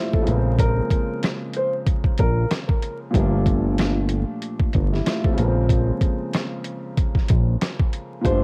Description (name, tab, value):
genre	hip hop, boom-bap hip-hop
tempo	94 BPM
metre	4/4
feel	swing 58% on 16ths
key	unclear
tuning	A4 = 438 Hz
part	dark upright piano	melody	0.0-2.5, 8.3-8.4 s	Bb4 to C5	-30 LUFS	equal	high-pass filter, low-pass filter, tape echo
part	dark grand piano	accompaniment	0.0-8.4 s	Bb2 to A4	-29 LUFS	equal	high-pass filter, low-pass filter, cassette tape
part	boom bap sampler-style drum kit	drums	0.1-8.4 s	hi-hat, kick drum, rim click, snare drum	-23 LUFS	equal	cassette tape
part	fat analog bass	bass	0.3-8.4 s	G1 to Bb1	-23 LUFS	equal	none
room	small room ambience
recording	home recording on cassette, vinyl crackle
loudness	-22 LUFS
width	mono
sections	0.0-8.4 A section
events	none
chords	0.3 Bbm9; 3.1 Gm9; 5.4 Bbm9